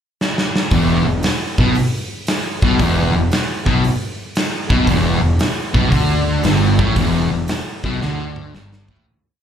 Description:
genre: blues rock power trio and southern rock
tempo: 115 BPM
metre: 4/4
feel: swing 67% on 8ths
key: E minor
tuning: A4 = 444 Hz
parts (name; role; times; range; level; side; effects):
- big rock drum kit; drums; 0.2-9.0 s; hi-hat, kick drum, snare drum, toms; -20 LUFS; equal; none
- fuzz guitar; riff; 0.7-9.1 s; E2 to D3; -17 LUFS; equal; distortion, slapback echo
- fuzz fingered electric bass; bass; 0.7-9.0 s; E1 to D2; -19 LUFS; equal; overdrive
room: light reverb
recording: live gig heard through the venue's PA, club reverb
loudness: -15 LUFS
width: side -9 dB against mid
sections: 0.0-0.7 pickup bar; 0.7-9.1 riff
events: drum fill 0.2-0.7, 8.0-9.1; fade-out 7.0-9.1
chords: 0.0 N.C.; 0.7 Em

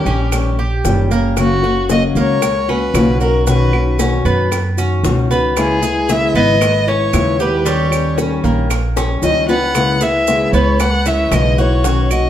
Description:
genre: latin, Cuban son and guajira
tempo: 114 BPM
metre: 4/4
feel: straight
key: unclear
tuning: A4 = 440 Hz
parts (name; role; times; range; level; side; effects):
- warm violin; melody; 0.0-12.3 s; F#4 to F#5; -18 LUFS; left 1 dB; plate reverb
- fingerpicked steel-string acoustic guitar; accompaniment; 0.0-12.3 s; B2 to G4; -18 LUFS; left 3 dB; none
- Cuban tres; arpeggios; 0.0-12.3 s; G3 to G#4; -21 LUFS; right 3 dB; none
- upright bass; bass; 0.1-12.3 s; F#1 to F#2; -18 LUFS; right 1 dB; none
- bongos; percussion; 0.1-12.3 s; none; -24 LUFS; left 4 dB; none
- maracas; percussion; 0.1-12.3 s; none; -30 LUFS; right 6 dB; none
- claves; percussion; 0.3-12.3 s; none; -28 LUFS; right 8 dB; none
room: wet studio reverb, RT60 0.7 s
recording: heard from further back in the room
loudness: -12 LUFS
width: side -11 dB against mid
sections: 0.0-1.4 A section; 1.4-12.3 B section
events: drum fill 9.0-9.8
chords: 0.0 D#7; 1.4 F#; 3.5 Badd9; 5.6 C#m7; 7.7 D#7; 9.8 C#m7

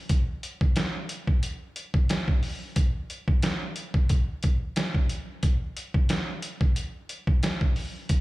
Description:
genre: hip hop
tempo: 90 BPM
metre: 4/4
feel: swing 54% on 16ths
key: none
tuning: none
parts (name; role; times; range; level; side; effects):
- trip hop sampler-style drum kit; drums; 0.1-8.2 s; hi-hat, kick drum, snare drum; -24 LUFS; equal; none
room: light reverb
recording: studio reverb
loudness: -24 LUFS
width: side -19 dB against mid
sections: 0.0-8.2 A section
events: none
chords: none

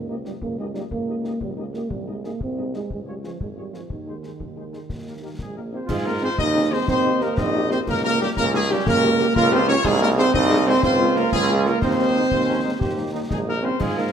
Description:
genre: military-style march for wind band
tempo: 121 BPM (dotted quarters)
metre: 6/8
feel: straight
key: Ab major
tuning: A4 = 436 Hz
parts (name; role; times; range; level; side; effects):
- mellow euphonium; second line; 0.0-14.0 s; Eb3 to Eb4; -24 LUFS; right 2 dB; none
- clear tuba; bass; 0.0-14.1 s; Ab1 to Ab2; -26 LUFS; right 2 dB; none
- mellow trumpet section; melody; 0.1-14.1 s; G4 to Eb5; -25 LUFS; left 4 dB; none
- mellow French horn section; accompaniment; 0.1-14.0 s; G3 to Ab4; -30 LUFS; left 5 dB; none
- concert snare drum, concert bass drum and clash cymbals; drums; 0.3-14.1 s; none; -30 LUFS; left 2 dB; none
- mellow trombone section; sustained chords; 5.9-14.1 s; Bb3 to G4; -27 LUFS; right 4 dB; none
room: moderate concert hall reverb, RT60 2.3 s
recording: none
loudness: -18 LUFS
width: side -8 dB against mid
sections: 0.0-5.9 A section; 5.9-14.1 A section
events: none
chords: 0.0 Eb7/Db; 1.9 Ab/C; 2.9 Db; 3.9 Ab/Eb; 4.9 Eb; 5.9 Ab; 6.9 Eb; 7.9 Eb7/Db; 9.8 Ab/C; 10.8 Bbm7/Db; 11.8 Ab/Eb; 12.8 Eb

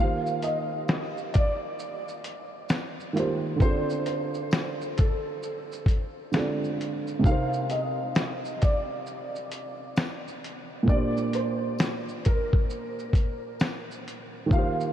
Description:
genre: lo-fi hip hop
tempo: 66 BPM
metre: 4/4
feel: swing 61% on 16ths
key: unclear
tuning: A4 = 440 Hz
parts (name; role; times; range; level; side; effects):
- felt-muted upright piano; melody; 0.0-14.9 s; A4 to F5; -32 LUFS; equal; ensemble chorus, analog delay
- dark upright piano; accompaniment; 0.0-14.9 s; Bb2 to D5; -30 LUFS; right 2 dB; cassette tape
- dusty soul sampler-style drum kit; drums; 0.3-14.9 s; hi-hat, kick drum, shaker, snare drum; -26 LUFS; equal; none
- tambourine; percussion; 0.9-13.9 s; none; -57 LUFS; left 6 dB; none
room: moderate huge ambient reverb, RT60 8.7 s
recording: dreamy mix soaked in reverb, cassette tape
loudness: -25 LUFS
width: side -11 dB against mid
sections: 0.0-14.9 A section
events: none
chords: 0.0 Eb69; 3.6 Dm7; 7.2 Cm9; 10.9 Bb6

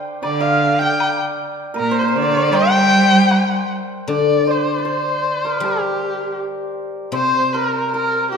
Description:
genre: chinese traditional, Chinese chamber ensemble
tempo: 78 BPM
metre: 2/4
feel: rubato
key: G yu mode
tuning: A4 = 440 Hz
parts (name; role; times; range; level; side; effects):
- hammered dulcimer; second line; 0.0-8.4 s; G4 to G5; -21 LUFS; right 2 dB; none
- dark erhu; melody; 0.2-8.4 s; G4 to G5; -19 LUFS; left 3 dB; none
- clear cello; second line; 0.2-3.7 s; Bb2 to G3; -19 LUFS; right 2 dB; none
- woodblock; percussion; 0.2-3.5 s; none; -31 LUFS; left 3 dB; none
- guzheng; accompaniment; 4.1-8.4 s; C3 to G3; -22 LUFS; left 6 dB; none
room: wet concert hall reverb, RT60 1.9 s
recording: none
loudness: -15 LUFS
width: side -6 dB against mid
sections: 0.0-4.1 A section; 4.1-8.4 B section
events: none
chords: none

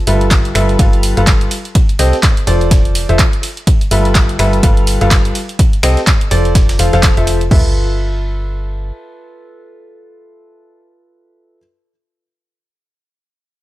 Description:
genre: piano house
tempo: 125 BPM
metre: 4/4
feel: swing 58% on 16ths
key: G mixolydian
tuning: A4 = 436 Hz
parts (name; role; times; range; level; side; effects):
- clear grand piano; riff; 0.1-11.6 s; F3 to F5; -18 LUFS; left 1 dB; sidechain pumping, digital delay
- solid FM bass; bass; 0.1-8.9 s; F1 to C2; -15 LUFS; equal; sidechain pumping
- breakbeat sampler-style drum kit; drums; 0.1-7.4 s; hi-hat, ride cymbal, snare drum; -28 LUFS; right 1 dB; none
- punchy analog drum machine; drums; 0.1-7.5 s; finger snaps, handclaps, hi-hat; -18 LUFS; right 1 dB; none
- punchy analog drum machine; drums; 0.3-7.6 s; crash cymbal, kick drum, toms; -12 LUFS; equal; none
room: little or no reverb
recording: none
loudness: -10 LUFS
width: side -16 dB against mid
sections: 0.0-7.5 A section; 7.5-11.4 B section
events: drop 0.0-7.5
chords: 0.0 G13; 1.5 Cm6; 2.5 F; 3.7 G13; 5.4 Cm6; 6.3 Fmaj7; 7.5 G13

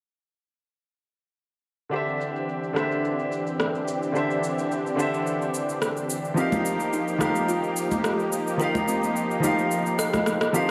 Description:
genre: sunset chillout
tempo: 108 BPM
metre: 4/4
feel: swing 53% on 16ths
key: D phrygian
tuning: A4 = 440 Hz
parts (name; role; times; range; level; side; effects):
- clear baby grand piano; accompaniment; 1.9-10.7 s; D3 to F5; -29 LUFS; equal; delay, shimmer reverb
- lush unison pad; sustained chords; 1.9-10.7 s; E3 to G4; -31 LUFS; equal; chorus, shimmer reverb
- electronic cabasa and rim click; drums; 1.9-10.7 s; none; -32 LUFS; equal; overdrive, low-pass filter on perc, low-pass filter on snare, low-pass filter on room
- kalimba; arpeggios; 6.4-10.7 s; C4 to Eb5; -32 LUFS; equal; delay, shimmer reverb
- congas; percussion; 6.5-10.2 s; none; -34 LUFS; equal; none
room: wet plate reverb, RT60 1.4 s, small room reverb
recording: dreamy mix soaked in reverb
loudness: -25 LUFS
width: mono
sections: 1.9-10.7 A section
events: filter sweep on drum 1.9-10.7; drum fill 10.0-10.7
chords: 1.9 D9sus4; 6.4 F9sus4

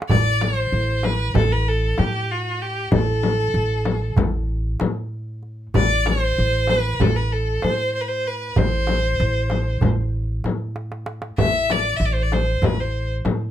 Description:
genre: Turkish makam ensemble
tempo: 191 BPM (eighths)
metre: 9/8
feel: straight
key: A makam huseyni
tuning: A4 = 440 Hz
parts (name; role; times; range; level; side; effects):
- darbuka; percussion; 0.0-13.4 s; none; -25 LUFS; right 4 dB; none
- bright violin; melody; 0.1-13.1 s; F#4-41c to E5; -22 LUFS; equal; plate reverb
- upright bass; bass; 0.1-13.5 s; A1 to A2; -23 LUFS; equal; none
- frame drum; percussion; 0.1-13.4 s; none; -24 LUFS; left 5 dB; none
room: light reverb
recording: close, detailed microphones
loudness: -18 LUFS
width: side -11 dB against mid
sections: 0.1-13.5 A section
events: drum fill 10.8-11.4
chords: none

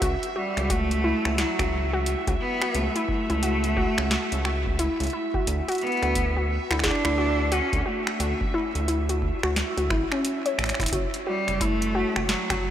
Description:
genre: IDM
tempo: 88 BPM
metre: 4/4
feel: swing 62% on 16ths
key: F# phrygian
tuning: A4 = 440 Hz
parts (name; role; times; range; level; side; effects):
- warbly dusty pluck; arpeggios; 0.0-12.6 s; C#4 to C#5; -28 LUFS; left 2 dB; chorus, diffuse ambient delay
- rubbery square bass; bass; 0.0-12.7 s; D1 to D2; -28 LUFS; equal; none
- booming analog drum machine; drums; 0.0-12.6 s; finger snaps, hi-hat, snare drum; -30 LUFS; equal; overdrive, tape echo
- electronic kick drum; drums; 0.0-12.6 s; none; -30 LUFS; equal; overdrive
- bubbling stepped-filter texture; texture; 0.0-12.7 s; C#5 to E5; -36 LUFS; right 4 dB; chorus, built-in reverb
- bright cello; melody; 0.4-12.7 s; F#3 to D4; -28 LUFS; right 1 dB; tape echo
room: moderate cathedral reverb, RT60 5.9 s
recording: dreamy mix soaked in reverb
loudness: -22 LUFS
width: side -10 dB against mid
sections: 0.0-12.7 A section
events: drum fill 10.6-10.9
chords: 0.0 F#m7/C#; 5.5 Dadd9; 10.9 F#m

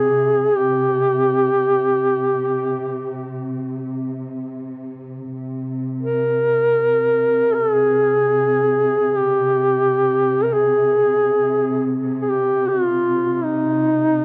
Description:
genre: caucasian folk, Caucasian lament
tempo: free time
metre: none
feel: none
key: C minor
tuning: A4 = 440 Hz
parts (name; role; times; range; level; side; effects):
- mellow duduk; melody; 0.0-14.2 s; Eb4 to Bb4; -19 LUFS; equal; cassette tape, analog delay
- dark symphonic string section; drone; 0.0-14.2 s; C3; -28 LUFS; equal; cassette tape
room: moderate booth ambience, RT60 0.2 s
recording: home recording on cassette, nothing above 7.7 kHz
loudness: -19 LUFS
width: mono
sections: 0.0-14.2 A section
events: none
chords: none

